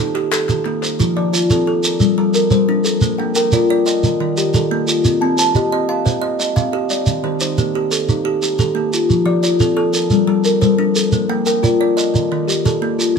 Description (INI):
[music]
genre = southern african traditional, mbira-style interlocking cycle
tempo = 118 BPM (dotted quarters)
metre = 12/8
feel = straight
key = unclear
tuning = A4 = 436 Hz
[part]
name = kalimba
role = arpeggios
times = 0.0-13.2 s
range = Eb3 to A5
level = -17 LUFS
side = left 4 dB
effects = none
[part]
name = kalimba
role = arpeggios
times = 0.0-13.2 s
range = Eb3 to A5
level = -20 LUFS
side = right 5 dB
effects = tape echo
[part]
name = group handclap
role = percussion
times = 0.2-0.9 s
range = none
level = -25 LUFS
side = left 6 dB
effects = none
[part]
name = shekere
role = percussion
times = 0.3-13.2 s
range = none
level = -18 LUFS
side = right 3 dB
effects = none
[sound]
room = moderate studio reverb, RT60 0.6 s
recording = none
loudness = -14 LUFS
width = side -6 dB against mid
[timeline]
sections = 1.0-13.2 A section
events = none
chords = 0.0 Eb; 1.0 F; 2.0 Gm; 3.0 Bb; 4.0 Eb; 5.0 Cm; 7.1 Eb; 9.1 F; 10.1 Gm; 11.1 Bb; 12.1 Eb